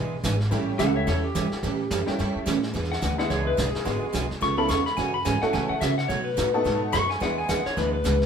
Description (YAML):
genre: country, western swing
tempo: 215 BPM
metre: 4/4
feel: swing 60% on 8ths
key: E mixolydian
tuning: A4 = 440 Hz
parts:
  - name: honky-tonk upright piano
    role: accompaniment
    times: 0.0-8.0 s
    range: G3 to A4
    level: -30 LUFS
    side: left 1 dB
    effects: none
  - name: picked steel-string acoustic guitar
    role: accompaniment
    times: 0.0-8.2 s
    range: B2 to A4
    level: -29 LUFS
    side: right 6 dB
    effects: none
  - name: upright bass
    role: bass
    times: 0.0-8.3 s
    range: G#1 to C#3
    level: -28 LUFS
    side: equal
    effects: none
  - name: vintage brush drum kit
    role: drums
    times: 0.2-8.3 s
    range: brushed snare drum, hi-hat, kick drum, snare drum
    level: -32 LUFS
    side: right 1 dB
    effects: none
  - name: pedal steel guitar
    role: second line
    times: 0.8-8.3 s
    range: G4 to C#6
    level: -27 LUFS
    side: left 3 dB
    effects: none
room: wet studio reverb, RT60 0.8 s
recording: band playing live in one room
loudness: -22 LUFS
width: side -7 dB against mid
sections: 0.0-8.3 A section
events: pedal steel guitar solo 0.0-8.3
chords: 0.0 E7; 0.5 A7; 2.7 E7; 3.9 G#m7b5; 4.4 C#7alt; 5.0 F#m7; 6.1 B7; 7.2 E7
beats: 0.24 | 0.52 0.80 1.08 1.35 | 1.63 1.91 2.19 2.47 | 2.75 3.03 3.31 3.58 | 3.86 4.14 4.42 4.70 | 4.98 5.26 5.54 5.82 | 6.09 6.37 6.65 6.93 | 7.21 7.49 7.77 8.05